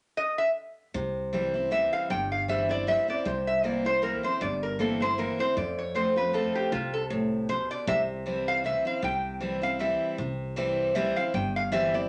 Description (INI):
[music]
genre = bluegrass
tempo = 156 BPM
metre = 3/4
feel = swing 55% on 8ths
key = C major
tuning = A4 = 440 Hz
[part]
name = lap resonator guitar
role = melody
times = 0.2-12.1 s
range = F4 to G5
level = -30 LUFS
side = equal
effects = none
[part]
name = picked steel-string acoustic guitar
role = accompaniment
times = 0.9-12.1 s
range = F2 to F4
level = -32 LUFS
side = equal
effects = none
[part]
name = upright bass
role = bass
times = 0.9-12.1 s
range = G1 to F2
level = -38 LUFS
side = equal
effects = none
[sound]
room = wet club reverb, RT60 0.7 s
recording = nothing above 10.8 kHz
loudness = -28 LUFS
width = mono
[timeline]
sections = 0.9-10.2 A section; 10.2-12.1 A section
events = none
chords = 0.0 N.C.; 0.9 C; 3.3 C7; 5.6 F; 7.9 C